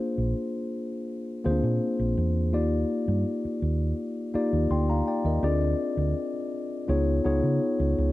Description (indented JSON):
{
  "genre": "lush 1970s-style soul",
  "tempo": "83 BPM",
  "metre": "4/4",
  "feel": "straight",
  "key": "unclear",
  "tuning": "A4 = 440 Hz",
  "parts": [
    { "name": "mellow tine electric piano", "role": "accompaniment", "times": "0.0-8.1 s", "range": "Bb3 to C6", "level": "-26 LUFS", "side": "left 2 dB", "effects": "none" },
    { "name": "hollow-body short-scale fingered electric bass", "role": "bass", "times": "0.2-8.1 s", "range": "Bb1 to Db3", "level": "-26 LUFS", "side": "right 1 dB", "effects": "none" }
  ],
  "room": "light reverb",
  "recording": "none",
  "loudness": "-24 LUFS",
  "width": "side -17 dB against mid",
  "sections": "0.0-8.1 A section",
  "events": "none",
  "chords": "0.0 Bb9; 2.5 Ebmaj7; 5.4 Dm7b5; 6.9 Db9"
}